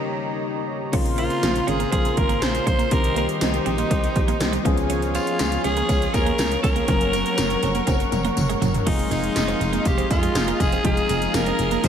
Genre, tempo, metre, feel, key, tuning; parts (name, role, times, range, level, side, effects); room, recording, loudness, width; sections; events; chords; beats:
1980s-style pop; 121 BPM; 4/4; straight; F minor; A4 = 440 Hz
raspy alto saxophone; melody; 0.0-11.9 s; Eb3 to C5; -25 LUFS; equal; ping-pong delay
barky tine electric piano; accompaniment; 0.0-11.9 s; Db3 to Bb4; -27 LUFS; left 4 dB; lush chorus
brassy analog pad; sustained chords; 0.0-11.9 s; G4 to Db6; -28 LUFS; right 1 dB; chorus
twelve-string electric guitar; riff; 0.9-11.8 s; F3 to Db4; -30 LUFS; right 7 dB; wide subtle chorus, ping-pong delay
solid FM bass; bass; 0.9-11.9 s; F1 to F2; -27 LUFS; equal
80s electronic pad drums; drums; 0.9-11.9 s; crash cymbal, hi-hat, kick drum, snare drum, tambourine, toms; -24 LUFS; equal; gated reverb on snare and toms, overdrive
tambourine; percussion; 5.1-11.9 s; -39 LUFS; left 8 dB
moderate huge ambient reverb, RT60 8.1 s; dreamy mix soaked in reverb; -19 LUFS; side -8 dB against mid
0.9-8.9 A section; 8.9-11.9 B section
break 0.0-0.9; drum fill 7.9-8.9
0.0 Eb7; 0.9 Bbmadd9; 2.9 Cm; 4.6 Db7; 6.9 Gb; 8.9 Fm7
0.43 | 0.93 1.43 1.92 2.42 | 2.91 3.41 3.90 4.40 | 4.90 5.39 5.89 6.38 | 6.88 7.38 7.87 8.37 | 8.86 9.36 9.86 10.35 | 10.85 11.34 11.84